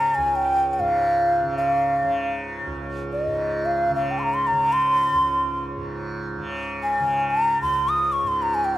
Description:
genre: indian classical, Hindustani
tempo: free time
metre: none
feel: none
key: Db raga yaman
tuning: A4 = 439 Hz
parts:
  - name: breathy bansuri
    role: melody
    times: 0.0-8.8 s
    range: Eb5 to Eb6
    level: -20 LUFS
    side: equal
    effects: none
  - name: tanpura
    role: drone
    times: 0.0-8.8 s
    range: Db2 to Db3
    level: -28 LUFS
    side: right 1 dB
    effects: none
room: moderate recital hall reverb, RT60 1.7 s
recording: close, detailed microphones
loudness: -20 LUFS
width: side -14 dB against mid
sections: 0.0-8.8 A section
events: none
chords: none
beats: free time

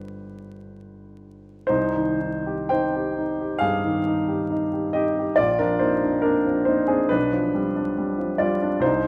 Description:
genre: classical, romantic character piece for solo piano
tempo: 58-71 BPM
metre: 4/4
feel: rubato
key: C minor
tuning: A4 = 441 Hz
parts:
  - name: clear baby grand piano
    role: solo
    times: 0.0-9.1 s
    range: G1 to G5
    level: -23 LUFS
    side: equal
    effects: none
room: moderate scoring stage reverb, RT60 1.8 s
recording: dark, warm production, vinyl crackle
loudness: -23 LUFS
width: mono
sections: 0.0-1.7 A section; 1.7-9.1 B section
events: none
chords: 0.0 G; 1.7 Cm; 5.4 Bb; 7.1 G7/B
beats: 0.75 | 1.69 2.69 3.61 4.49 | 5.38 6.24 7.09 7.96 | 8.83

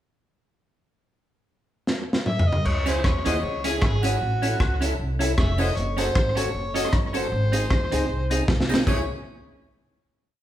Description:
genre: ska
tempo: 154 BPM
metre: 4/4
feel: swing 55% on 8ths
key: C# harmonic minor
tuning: A4 = 439 Hz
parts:
  - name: crunchy breakbeat drum kit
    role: drums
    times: 1.9-9.0 s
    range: crash cymbal, hi-hat, kick drum, rim click, snare drum, toms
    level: -24 LUFS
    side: equal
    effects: slapback echo
  - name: overdriven harmonica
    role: melody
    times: 2.3-9.1 s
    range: C#4 to E5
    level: -28 LUFS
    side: equal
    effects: none
  - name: upright bass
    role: bass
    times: 2.6-9.1 s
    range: E#1 to E2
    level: -26 LUFS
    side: equal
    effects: none
  - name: vintage hollow-body jazz guitar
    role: accompaniment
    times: 2.9-9.0 s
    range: B#3 to A4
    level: -31 LUFS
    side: right 3 dB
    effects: none
  - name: percussive tonewheel organ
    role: stabs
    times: 2.9-9.0 s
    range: B#3 to A4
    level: -30 LUFS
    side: left 3 dB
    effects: overdrive, chorus vibrato, slow rotary speaker
  - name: tambourine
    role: percussion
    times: 2.9-9.1 s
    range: none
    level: -40 LUFS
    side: left 4 dB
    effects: none
room: moderate large studio reverb, RT60 1.3 s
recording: band playing live in one room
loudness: -21 LUFS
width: side -12 dB against mid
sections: 1.1-2.6 pickup bar; 2.6-8.9 head; 8.9-10.4 final chord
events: drum fill 1.9-2.6, 8.5-8.9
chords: 1.1 N.C.; 2.6 C#m; 4.2 A; 5.8 F#m; 7.3 G#; 8.9 C#m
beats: | 1.09 1.48 1.87 2.26 | 2.65 3.04 3.43 3.82 | 4.21 4.60 4.99 5.38 | 5.76 6.15 6.54 6.93 | 7.32 7.71 8.09 8.48 | 8.87

